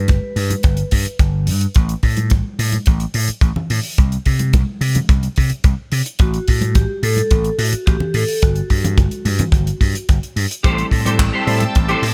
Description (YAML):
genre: nu-disco, nu disco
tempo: 108 BPM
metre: 4/4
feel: straight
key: unclear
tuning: A4 = 441 Hz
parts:
  - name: vibraphone with medium hard mallets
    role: melody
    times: 0.0-0.9, 6.2-10.1 s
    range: F#4 to B4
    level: -27 LUFS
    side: equal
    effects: digital delay
  - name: vintage slap bass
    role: bass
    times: 0.0-12.1 s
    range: G1 to C3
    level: -21 LUFS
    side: equal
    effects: sidechain pumping
  - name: kick drum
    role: drums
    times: 0.1-11.9 s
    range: none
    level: -17 LUFS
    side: equal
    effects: studio reverb
  - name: tight funk drum kit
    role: drums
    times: 0.1-12.1 s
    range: handclaps, hi-hat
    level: -29 LUFS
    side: equal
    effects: studio reverb
  - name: congas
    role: percussion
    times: 0.1-11.7 s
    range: none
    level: -28 LUFS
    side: equal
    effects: none
  - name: mellow tine electric piano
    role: accompaniment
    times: 10.6-12.0 s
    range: G3 to A4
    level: -26 LUFS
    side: equal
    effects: lush chorus, sidechain pumping
  - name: string machine, full ensemble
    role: sustained chords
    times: 10.6-12.1 s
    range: C4 to E6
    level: -28 LUFS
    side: equal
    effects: phaser, ensemble chorus, sidechain pumping
  - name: clean electric guitar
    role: riff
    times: 10.6-12.0 s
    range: G4 to C5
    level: -24 LUFS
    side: equal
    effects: ensemble chorus
room: little or no reverb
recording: bright 1980s-style digital production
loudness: -17 LUFS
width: mono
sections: 0.0-12.1 A section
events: none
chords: 0.0 G; 1.8 N.C.; 6.2 F#m/A; 8.4 N.C.; 10.6 Am7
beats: 0.09 0.64 1.20 | 1.75 2.31 2.87 3.42 | 3.98 4.53 5.09 5.64 | 6.20 6.75 7.31 7.87 | 8.42 8.98 9.53 10.09 | 10.64 11.20 11.75